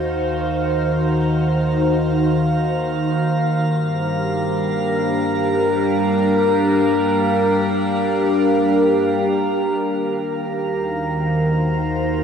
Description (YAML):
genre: ambient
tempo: free time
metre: none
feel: none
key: unclear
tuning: A4 = 439 Hz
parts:
  - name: evolving wavetable pad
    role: sustained chords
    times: 0.0-12.2 s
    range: Eb3 to F5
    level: -17 LUFS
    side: equal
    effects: chorus, built-in reverb, phaser
  - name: deep rumbling drone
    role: bass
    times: 0.0-12.2 s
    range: Eb2 to G2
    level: -32 LUFS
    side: equal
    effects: built-in reverb
  - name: drifting glass-harmonics texture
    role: texture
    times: 0.1-12.2 s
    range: Bb3 to Bb5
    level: -26 LUFS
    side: equal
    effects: chorus, built-in reverb
room: wet huge ambient reverb, RT60 7.5 s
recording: dark, warm production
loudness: -16 LUFS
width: side -7 dB against mid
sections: 0.0-9.8 A section; 9.8-12.2 B section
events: fade-in on synth drone 0.0-9.8; fade-in on synth texture 0.0-9.8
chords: 0.0 Ebm6; 3.1 Gm7; 9.8 Ebm6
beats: free time